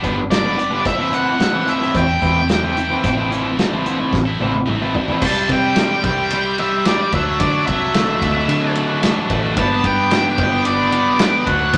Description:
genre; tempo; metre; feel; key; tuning
indie rock; 110 BPM; 4/4; straight; G major; A4 = 440 Hz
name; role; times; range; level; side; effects
fuzz guitar; riff; 0.0-11.8 s; E3 to E4; -23 LUFS; equal; distortion
scooped high-gain guitar; riff; 0.0-11.8 s; G2 to A4; -26 LUFS; equal; distortion
fingered electric bass; bass; 0.0-11.8 s; G1 to D3; -26 LUFS; equal; none
loose indie drum kit; drums; 0.0-11.8 s; crash cymbal, hi-hat, kick drum, ride cymbal, snare drum, toms; -24 LUFS; equal; none
octave-fuzz lead guitar; melody; 0.3-11.8 s; D5 to A5; -22 LUFS; equal; distortion
overdriven combo organ; sustained chords; 5.2-11.8 s; F#4 to D6; -32 LUFS; equal; none
group handclap; percussion; 10.1-11.3 s; none; -32 LUFS; equal; none
room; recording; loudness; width
moderate club reverb, RT60 0.6 s; none; -17 LUFS; mono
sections
0.0-5.2 A section; 5.2-11.8 B section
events
drum fill 4.1-5.2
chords
0.0 G; 0.9 Am7; 5.2 Cmaj7; 7.1 Dadd9; 9.6 G

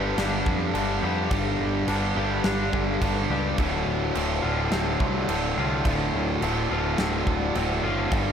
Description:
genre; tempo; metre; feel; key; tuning
post-rock; 106 BPM; 4/4; straight; D minor; A4 = 441 Hz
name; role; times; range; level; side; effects
twangy electric guitar; arpeggios; 0.0-8.3 s; D2 to G4; -31 LUFS; left 2 dB; lush chorus, ping-pong delay
overdriven semi-hollow guitar; riff; 0.0-8.3 s; D2 to G3; -28 LUFS; left 7 dB; none
tight distorted guitar; riff; 0.0-8.3 s; D2 to G3; -29 LUFS; right 10 dB; distortion
growling picked electric bass; bass; 0.0-8.3 s; D1 to F2; -30 LUFS; equal; overdrive
huge arena drum kit; drums; 0.2-8.2 s; crash cymbal, kick drum, snare drum; -30 LUFS; right 1 dB; none
room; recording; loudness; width
moderate huge ambient reverb, RT60 8.8 s; dreamy mix soaked in reverb; -22 LUFS; side -8 dB against mid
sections
0.0-8.3 A section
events
none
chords
0.0 G5; 3.6 Dm7

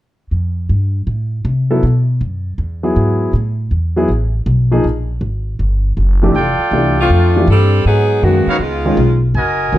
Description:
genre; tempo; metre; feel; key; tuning
jazz; 160 BPM; 4/4; swing 66% on 8ths; unclear; A4 = 440 Hz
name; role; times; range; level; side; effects
upright bass; bass; 0.3-9.8 s; F1 to C3; -14 LUFS; equal; none
clear grand piano; accompaniment; 1.7-9.8 s; F2 to A4; -16 LUFS; equal; none
clear trumpet section; stabs; 6.3-9.8 s; Eb4 to Ab5; -17 LUFS; right 1 dB; none
warm saxophone section; melody; 7.0-9.2 s; Eb3 to A4; -15 LUFS; left 1 dB; none
room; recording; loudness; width
light reverb; dark, warm production; -12 LUFS; side -14 dB against mid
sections
0.3-6.3 A section; 6.3-9.8 B section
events
none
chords
0.3 F; 1.8 B5; 2.6 E; 3.3 A5; 4.8 Absus2; 5.6 Em11; 6.3 F69; 7.8 Abm9; 8.6 Db9

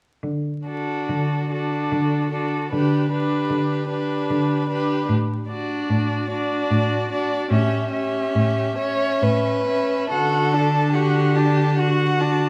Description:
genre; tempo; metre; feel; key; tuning
classical, slow romantic movement for string quartet; 65-77 BPM; 3/4; rubato; D major; A4 = 439 Hz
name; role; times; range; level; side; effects
rich cello; bass; 0.2-12.5 s; A2 to D3; -25 LUFS; equal; none
rich violin; melody; 0.7-12.5 s; A4 to A5; -30 LUFS; equal; none
rich violin; second line; 0.7-12.5 s; F#4 to C#5; -28 LUFS; equal; none
rich viola; accompaniment; 0.7-12.5 s; C#4 to F#4; -28 LUFS; equal; none
room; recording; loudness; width
wet recital hall reverb, RT60 1.8 s; dark, warm production, vinyl crackle; -22 LUFS; mono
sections
0.2-10.1 A section; 10.1-12.5 B section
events
none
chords
0.2 D; 5.1 D/A; 7.5 A7; 10.1 D

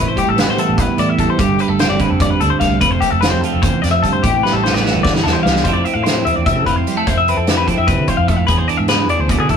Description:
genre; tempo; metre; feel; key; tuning
math rock and midwest emo; 296 BPM (eighths); 7/8; straight; unclear; A4 = 439 Hz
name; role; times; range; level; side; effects
twelve-string electric guitar; accompaniment; 0.0-9.6 s; E2 to G#4; -18 LUFS; right 5 dB; none
twelve-string electric guitar; arpeggios; 0.0-9.6 s; G4 to F5; -18 LUFS; left 6 dB; none
fingered electric bass; bass; 0.0-9.6 s; F1 to F3; -20 LUFS; equal; none
loose indie drum kit; drums; 0.2-9.6 s; hi-hat, kick drum, snare drum; -19 LUFS; equal; none
room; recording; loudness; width
wet small room reverb, RT60 0.6 s; rough rehearsal-room recording; -13 LUFS; side -7 dB against mid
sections
0.0-5.7 A section; 5.7-9.6 B section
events
drum fill 4.4-5.7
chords
0.0 Am9; 1.4 G9sus4; 2.8 Fmaj7; 4.2 Am9; 5.7 Fmaj7; 8.5 E7

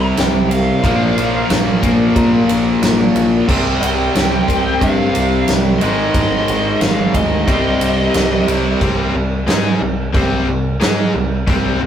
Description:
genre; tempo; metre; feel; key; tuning
hard rock; 90 BPM; 4/4; straight; C minor; A4 = 440 Hz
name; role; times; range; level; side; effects
high-gain lead guitar; melody; 0.0-8.4 s; Eb5 to C6; -21 LUFS; left 1 dB; distortion, digital delay
crunchy overdriven guitar; riff; 0.0-11.9 s; Ab2 to Ab4; -20 LUFS; left 5 dB; none
distorted electric guitar; riff; 0.0-8.8 s; Ab2 to C4; -20 LUFS; right 4 dB; overdrive
distorted electric guitar; riff; 0.0-11.9 s; Ab2 to Ab4; -22 LUFS; equal; overdrive
picked electric bass; bass; 0.0-11.9 s; Ab1 to Bb2; -21 LUFS; equal; none
huge arena drum kit; drums; 0.2-11.6 s; crash cymbal, kick drum, ride cymbal, snare drum; -18 LUFS; right 1 dB; none
room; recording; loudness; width
wet small room reverb, RT60 0.5 s; rough rehearsal-room recording; -13 LUFS; side -9 dB against mid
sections
0.0-8.8 A section; 8.8-11.9 B section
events
none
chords
0.0 C5; 0.8 Bb5; 3.5 C5; 5.8 Ab5; 7.5 Cm

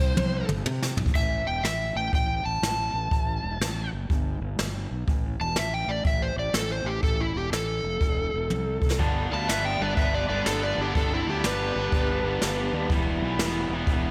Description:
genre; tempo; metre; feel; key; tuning
blues rock power trio and southern rock; 123 BPM; 4/4; swing 65% on 8ths; A minor; A4 = 440 Hz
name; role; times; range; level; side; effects
bluesy overdriven lead guitar; second line; 0.0-0.5, 9.3-12.9 s; C4 to F5; -36 LUFS; equal; distortion, slapback echo
fuzz fingered electric bass; bass; 0.0-14.1 s; E1 to C3; -33 LUFS; equal; overdrive
jazz brush drum kit; drums; 0.2-14.0 s; crash cymbal, hi-hat, kick drum, snare drum, toms; -30 LUFS; equal; none
overdriven slide guitar; melody; 1.2-12.9 s; E4 to A5; -31 LUFS; equal; slapback echo
raw garage guitar; riff; 9.0-14.1 s; G2 to E4; -31 LUFS; equal; overdrive
room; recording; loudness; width
moderate scoring stage reverb, RT60 1.5 s, studio reverb; big arena sound; -26 LUFS; mono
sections
0.0-1.1 A section; 1.1-14.1 B section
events
lead electric guitar solo 0.0-1.1; drum fill 0.2-1.1, 8.5-9.0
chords
0.0 C5; 1.1 A5; 4.1 N.C.; 4.6 G; 5.1 A5; 8.0 Esus4; 8.5 Am/C; 9.0 G; 12.9 Em

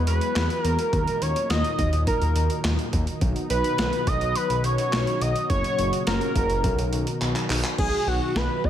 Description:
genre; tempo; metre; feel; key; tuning
synth-pop; 105 BPM; 4/4; straight; B major; A4 = 438 Hz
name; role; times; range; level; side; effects
octave-doubled lead; melody; 0.0-8.7 s; F#4 to D#5; -26 LUFS; equal; chorus, digital delay
warm analog pad; sustained chords; 0.0-8.7 s; A#2 to F#4; -30 LUFS; equal; chorus
smooth synth bass; bass; 0.0-8.7 s; F#1 to E2; -26 LUFS; equal; none
boom bap sampler-style drum kit; drums; 0.1-8.7 s; crash cymbal, handclaps, hi-hat, kick drum, snare drum; -27 LUFS; equal; overdrive
room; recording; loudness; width
light reverb, digital ambience; none; -21 LUFS; side -10 dB against mid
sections
0.0-7.8 A section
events
drum fill 7.2-7.8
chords
0.0 Eadd9; 0.9 D#m; 3.2 B; 5.5 F#; 6.6 B

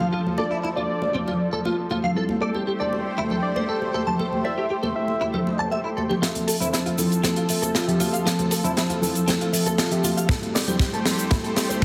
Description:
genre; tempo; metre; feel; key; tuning
nu-disco, nu disco; 118 BPM; 4/4; straight; F major; A4 = 440 Hz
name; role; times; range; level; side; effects
mellow reed electric piano; accompaniment; 0.0-11.8 s; F3 to E5; -29 LUFS; equal; sidechain pumping, low-pass filter, tape echo
lush unison pad; sustained chords; 0.0-11.8 s; F3 to C5; -32 LUFS; equal; chorus, phaser, sidechain pumping
direct-recorded clean electric guitar; riff; 0.0-11.8 s; C4 to A5; -32 LUFS; equal; ensemble chorus, low-pass filter, tape echo
tight funk drum kit; drums; 0.0-11.8 s; hi-hat, shaker, snare drum; -28 LUFS; equal; low-pass filter on hats, low-pass filter on snare, low-pass filter on perc, low-pass filter on room
congas; percussion; 0.0-11.8 s; none; -31 LUFS; equal; none
unison lead; melody; 0.4-5.7 s; A4 to E5; -31 LUFS; equal; delay
kick drum; drums; 10.3-11.8 s; none; -24 LUFS; equal; none
room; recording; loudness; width
wet echo chamber reverb, RT60 1.4 s, studio reverb; heavily compressed radio sound; -23 LUFS; mono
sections
0.0-6.2 A section; 6.2-11.8 B section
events
build-up 6.2-11.8; drum fill 6.2-11.8; filter sweep on reed electric piano 6.2-11.8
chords
0.0 F; 2.2 Am7; 6.2 Fmaj7; 10.3 Am7

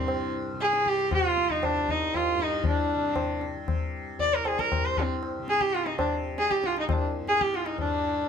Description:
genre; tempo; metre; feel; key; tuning
indian classical, Hindustani; 117 BPM; 5/4; straight; C raga darbari; A4 = 440 Hz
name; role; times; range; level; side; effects
bright sarangi; melody; 0.0-8.3 s; C4 to D5; -25 LUFS; equal; none
tanpura; drone; 0.0-8.3 s; C2 to C3; -36 LUFS; left 3 dB; none
tabla; percussion; 0.1-8.0 s; none; -31 LUFS; left 2 dB; none
room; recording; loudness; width
little or no reverb; close, detailed microphones; -24 LUFS; side -7 dB against mid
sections
0.0-7.8 A section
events
none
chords
none

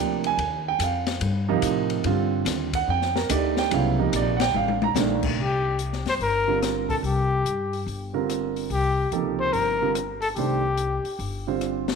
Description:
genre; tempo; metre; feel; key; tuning
modal jazz; 144 BPM; 4/4; swing 65% on 8ths; C dorian from 5.4 s; A4 = 442 Hz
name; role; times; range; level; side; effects
warm baby grand piano; accompaniment; 0.0-12.0 s; Bb2 to Bb5; -25 LUFS; right 10 dB; none
upright bass; bass; 0.0-12.0 s; G1 to A2; -28 LUFS; left 3 dB; none
open jazz drum kit; drums; 0.2-11.9 s; crash cymbal, hi-hat, kick drum, ride cymbal, rim click, snare drum, toms; -31 LUFS; left 9 dB; none
breathy trumpet; melody; 5.4-11.2 s; G4 to C5; -25 LUFS; left 4 dB; none
room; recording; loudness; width
moderate plate reverb, RT60 1.9 s, small room reverb; 1960s-style stereo with parts hard left and right; -22 LUFS; side -5 dB against mid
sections
0.0-5.4 A section; 5.4-12.0 B section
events
drum fill 4.5-5.0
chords
0.0 Cm11; 5.4 Cm9

